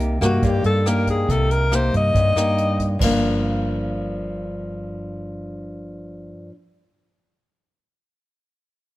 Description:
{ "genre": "bossa nova", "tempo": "140 BPM", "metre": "4/4", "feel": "straight", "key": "G minor", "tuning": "A4 = 441 Hz", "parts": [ { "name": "nylon-string guitar", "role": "accompaniment", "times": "0.0-6.6 s", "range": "G2 to G4", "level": "-24 LUFS", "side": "left 1 dB", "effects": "none" }, { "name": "hollow-body short-scale fingered electric bass", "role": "bass", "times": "0.0-6.3 s", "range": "G1 to G2", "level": "-23 LUFS", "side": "right 1 dB", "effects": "none" }, { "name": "jazz brush drum kit", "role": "drums", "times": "0.0-3.1 s", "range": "crash cymbal, hi-hat, kick drum, rim click", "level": "-26 LUFS", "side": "equal", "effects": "none" }, { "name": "breathy alto saxophone", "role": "melody", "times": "0.2-2.9 s", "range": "F#4 to Eb5", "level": "-22 LUFS", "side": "left 2 dB", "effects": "none" } ], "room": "light reverb", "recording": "close, detailed microphones", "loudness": "-18 LUFS", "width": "side -16 dB against mid", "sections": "0.0-3.0 A section; 3.0-6.4 B section", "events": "alto saxophone solo 0.0-3.0", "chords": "0.0 Cm7; 3.0 Gm7" }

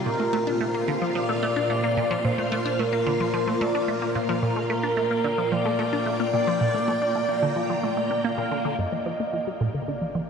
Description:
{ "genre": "ambient, sequencer-driven space music", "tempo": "110 BPM", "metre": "4/4", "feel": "straight", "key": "unclear", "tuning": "A4 = 437 Hz", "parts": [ { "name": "phased string machine", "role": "sustained chords", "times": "0.0-10.3 s", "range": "Bb2 to G5", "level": "-27 LUFS", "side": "equal", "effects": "ensemble chorus, phaser" }, { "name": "resonant blip pluck", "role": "riff", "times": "0.0-10.2 s", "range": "G2 to D4", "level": "-28 LUFS", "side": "equal", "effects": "phaser, ping-pong delay" }, { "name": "mellow horn-like synth lead", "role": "melody", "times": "0.1-10.3 s", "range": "Bb4 to F5", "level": "-26 LUFS", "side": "equal", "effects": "chorus, phaser, ping-pong delay" }, { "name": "round analog bass", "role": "bass", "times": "8.8-10.3 s", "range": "G1", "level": "-53 LUFS", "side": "equal", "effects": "none" } ], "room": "wet huge ambient reverb, RT60 8.1 s", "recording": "none", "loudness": "-22 LUFS", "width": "side -6 dB against mid", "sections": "0.0-8.8 A section; 8.8-10.3 B section", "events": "filter sweep on synth arpeggio sound 8.8-10.3", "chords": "0.1 Bb; 8.8 Gm" }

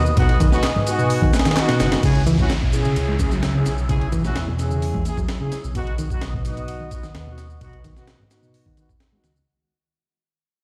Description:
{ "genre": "breakbeat, breaks", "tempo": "129 BPM", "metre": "4/4", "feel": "straight", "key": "unclear", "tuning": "A4 = 439 Hz", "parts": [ { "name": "dark analog pad", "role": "sustained chords", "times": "0.0-9.4 s", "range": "B4 to E6", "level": "-33 LUFS", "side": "equal", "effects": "chorus, sidechain pumping" }, { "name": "dark detuned saw bass", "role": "bass", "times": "0.0-9.4 s", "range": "F#1 to E2", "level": "-26 LUFS", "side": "equal", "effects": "tube saturation" }, { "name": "electronic shaker and handclaps", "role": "drums", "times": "0.1-9.5 s", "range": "none", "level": "-38 LUFS", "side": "equal", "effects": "overdrive, studio reverb" }, { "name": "reed electric piano", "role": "riff", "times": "0.2-9.3 s", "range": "G#2 to G#3", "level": "-26 LUFS", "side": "equal", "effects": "tube saturation, tape echo" }, { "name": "warm brass ensemble", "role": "stabs", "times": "0.2-9.3 s", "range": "B3 to G#4", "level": "-29 LUFS", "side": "equal", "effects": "low-pass filter, tape echo" }, { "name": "breakbeat sampler-style drum kit", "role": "drums", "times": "0.2-9.4 s", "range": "hi-hat, kick drum, ride cymbal, snare drum", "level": "-25 LUFS", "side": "equal", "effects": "studio reverb" }, { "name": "bongos and congas", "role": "percussion", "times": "0.3-5.1 s", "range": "none", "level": "-34 LUFS", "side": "equal", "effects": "none" }, { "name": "downlifter", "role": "sound effects", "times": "2.0-5.8 s", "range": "none", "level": "-38 LUFS", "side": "equal", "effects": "none" } ], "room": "light reverb", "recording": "played on a big sound system in a bare room, large studio reverb, vinyl crackle", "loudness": "-20 LUFS", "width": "mono", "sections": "0.0-2.0 A section; 2.0-9.5 B section", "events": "drop 0.0-2.0; fade-out 2.0-9.5; filter sweep on detuned saw bass 2.0-9.5", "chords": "0.0 B; 2.0 C#m; 5.8 B" }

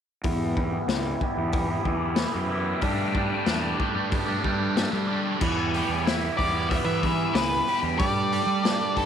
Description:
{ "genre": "psychedelic rock", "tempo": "93 BPM", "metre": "4/4", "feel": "straight", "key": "E minor", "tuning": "A4 = 440 Hz", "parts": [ { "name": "cranked stack guitar", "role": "riff", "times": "0.2-9.1 s", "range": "E3 to G4", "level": "-27 LUFS", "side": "equal", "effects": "overdrive, phaser, low-pass filter" }, { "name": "fuzz fingered electric bass", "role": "bass", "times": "0.2-9.1 s", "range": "C#2 to G3", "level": "-30 LUFS", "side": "right 1 dB", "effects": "overdrive" }, { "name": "raw garage drum kit", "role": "drums", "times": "0.2-9.1 s", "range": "crash cymbal, hi-hat, kick drum, snare drum", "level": "-28 LUFS", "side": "left 2 dB", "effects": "none" }, { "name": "overdriven combo organ", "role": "sustained chords", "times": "0.3-9.1 s", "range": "G3 to B5", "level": "-35 LUFS", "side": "right 10 dB", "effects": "low-pass filter" }, { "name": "octave-fuzz lead guitar", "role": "melody", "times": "6.4-9.1 s", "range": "A4 to E5", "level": "-27 LUFS", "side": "left 1 dB", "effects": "distortion, tape echo" } ], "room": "light reverb, small room ambience", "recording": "1960s-style stereo", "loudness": "-23 LUFS", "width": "side -8 dB against mid", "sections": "0.2-5.4 A section; 5.4-9.1 B section", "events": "filter sweep 0.2-5.4", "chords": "0.2 Em; 2.8 Gsus2; 5.4 Em; 8.0 Gsus2" }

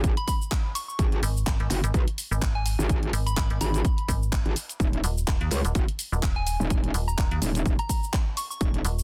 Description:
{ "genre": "bass house", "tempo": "126 BPM", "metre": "4/4", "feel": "swing 56% on 16ths", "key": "G# minor", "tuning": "A4 = 440 Hz", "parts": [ { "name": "metallic wobble bass", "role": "bass", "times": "0.0-8.8 s", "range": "D#1 to C#2", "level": "-29 LUFS", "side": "equal", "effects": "distortion, chorus, overdrive, sidechain pumping" }, { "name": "electronic kick drum", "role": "drums", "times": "0.0-8.7 s", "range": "none", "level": "-28 LUFS", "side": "equal", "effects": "none" }, { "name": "house drum kit", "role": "drums", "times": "0.0-9.0 s", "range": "handclaps, hi-hat, shaker", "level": "-36 LUFS", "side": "equal", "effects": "none" }, { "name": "soft synth bell", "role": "melody", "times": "0.2-8.6 s", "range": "G#5 to C#6", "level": "-37 LUFS", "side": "equal", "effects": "chorus, phaser, digital delay" }, { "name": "metallic FM bass", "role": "bass", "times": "1.2-9.0 s", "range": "D#1 to D#2", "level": "-29 LUFS", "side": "equal", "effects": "sidechain pumping" } ], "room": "digital ambience", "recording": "dense, heavily limited modern master", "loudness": "-26 LUFS", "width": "mono", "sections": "0.0-9.0 A section", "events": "none", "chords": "none" }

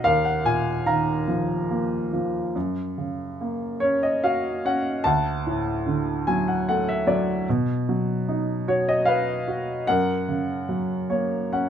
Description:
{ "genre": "classical, lyrical solo piano", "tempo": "73 BPM", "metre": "3/4", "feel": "rubato", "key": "F# major", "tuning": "A4 = 440 Hz", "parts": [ { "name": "warm upright piano", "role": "solo", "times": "0.0-11.7 s", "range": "D2 to A#5", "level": "-22 LUFS", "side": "equal", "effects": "none" } ], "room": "light reverb", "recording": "close, detailed microphones", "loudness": "-22 LUFS", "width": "side -9 dB against mid", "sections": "0.0-11.7 A section", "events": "upright piano fill 5.8-7.5, 10.7-11.7", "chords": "0.0 D#sus2; 2.5 F#; 5.0 D; 7.5 B; 9.9 F#" }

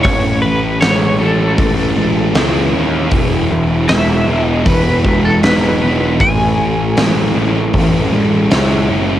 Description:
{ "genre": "rock, shoegaze and dream pop", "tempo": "78 BPM", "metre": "4/4", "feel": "straight", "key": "unclear", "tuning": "A4 = 440 Hz", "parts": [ { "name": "twelve-string electric guitar", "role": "melody", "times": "0.0-7.7 s", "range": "A4 to G#5", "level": "-18 LUFS", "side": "left 1 dB", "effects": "tremolo, cassette tape, analog delay" }, { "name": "thick fuzz guitar", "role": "riff", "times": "0.0-9.2 s", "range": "A2 to E4", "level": "-15 LUFS", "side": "equal", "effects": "distortion, wide subtle chorus, cassette tape" }, { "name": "fuzz picked electric bass", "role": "bass", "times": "0.0-9.2 s", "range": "E1 to D#2", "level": "-17 LUFS", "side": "equal", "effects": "overdrive, tube saturation" }, { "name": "huge arena drum kit", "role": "drums", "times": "0.0-8.7 s", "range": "hi-hat, kick drum, snare drum", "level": "-18 LUFS", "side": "equal", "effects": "cassette tape" } ], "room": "light reverb", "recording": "home recording on cassette", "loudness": "-11 LUFS", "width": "side -12 dB against mid", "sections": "0.0-9.2 A section", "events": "none", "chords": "0.0 Amaj7; 3.1 Emaj7; 6.2 Amaj7" }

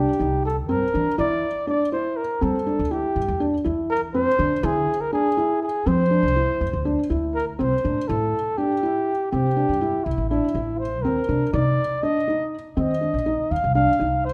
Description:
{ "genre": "contemporary instrumental, contemporary", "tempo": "243 BPM (eighths)", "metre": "7/8", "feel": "straight", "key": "C mixolydian", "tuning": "A4 = 440 Hz", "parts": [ { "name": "warm flugelhorn", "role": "melody", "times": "0.0-14.3 s", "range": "E4 to F5", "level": "-26 LUFS", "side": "equal", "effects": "none" }, { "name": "felt-muted upright piano", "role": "arpeggios", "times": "0.0-14.3 s", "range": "C4 to E4", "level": "-27 LUFS", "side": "equal", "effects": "none" }, { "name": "upright bass", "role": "bass", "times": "0.0-14.3 s", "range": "A1 to G3", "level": "-28 LUFS", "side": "equal", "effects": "none" } ], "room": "moderate concert hall reverb, RT60 1.9 s", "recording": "none", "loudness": "-22 LUFS", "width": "mono", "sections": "0.0-7.6 A section; 7.6-14.3 A section", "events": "none", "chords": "0.0 Eb; 0.7 Gm; 4.1 Fm; 7.6 C; 11.0 Ebsus2" }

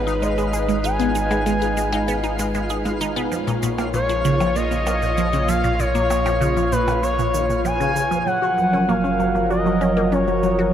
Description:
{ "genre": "ambient, sequencer-driven space music", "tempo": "97 BPM", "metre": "4/4", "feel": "straight", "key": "unclear", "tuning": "A4 = 440 Hz", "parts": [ { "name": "expressive portamento lead", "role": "melody", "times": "0.0-10.7 s", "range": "Cb5 to Ab5", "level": "-22 LUFS", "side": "left 1 dB", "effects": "chorus, tape echo" }, { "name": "sweeping resonant pad", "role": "sustained chords", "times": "0.0-10.7 s", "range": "Bb2 to Db5", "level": "-24 LUFS", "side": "right 1 dB", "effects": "chorus" }, { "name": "resonant blip pluck", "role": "riff", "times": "0.0-10.7 s", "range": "Bb2 to Ab4", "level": "-24 LUFS", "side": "equal", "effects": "phaser, tape echo" }, { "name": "warm sub bass", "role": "bass", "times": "0.0-10.7 s", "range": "Gb1 to Bb1", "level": "-26 LUFS", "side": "equal", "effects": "none" }, { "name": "twinkling granular texture", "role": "texture", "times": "0.0-10.7 s", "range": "F4 to Ab5", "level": "-33 LUFS", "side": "right 1 dB", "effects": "built-in reverb" }, { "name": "cabasa and percussion blips", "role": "percussion", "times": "0.1-10.7 s", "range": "none", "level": "-35 LUFS", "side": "right 3 dB", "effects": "tape echo" } ], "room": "wet huge ambient reverb, RT60 9.6 s", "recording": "none", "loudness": "-18 LUFS", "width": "side -10 dB against mid", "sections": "0.0-8.3 A section; 8.3-10.7 B section", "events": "none", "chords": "0.0 Abm; 3.3 Bbm; 8.3 Gbmaj7" }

